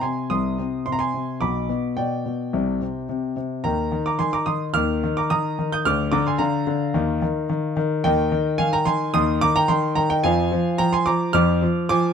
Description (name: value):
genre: classical-period piano sonatina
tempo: 108 BPM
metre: 4/4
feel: rubato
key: C minor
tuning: A4 = 437 Hz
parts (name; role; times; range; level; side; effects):
- clear grand piano; solo; 0.0-12.1 s; B1 to G6; -20 LUFS; equal; none
room: little or no reverb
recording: close, detailed microphones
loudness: -20 LUFS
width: side -7 dB against mid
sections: 0.0-12.1 A section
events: none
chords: 0.0 Cm; 1.4 G/B; 2.5 C5; 3.6 Eb; 5.9 Bb/D; 7.0 Eb5; 8.1 Eb; 9.1 Cm/Eb; 10.2 Fm; 11.3 Ddim/F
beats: 0.31 0.86 | 1.42 1.98 2.54 3.09 | 3.65 4.20 4.76 5.32 | 5.86 6.40 6.96 7.50 | 8.05 8.60 9.15 9.70 | 10.25 10.80 11.35 11.91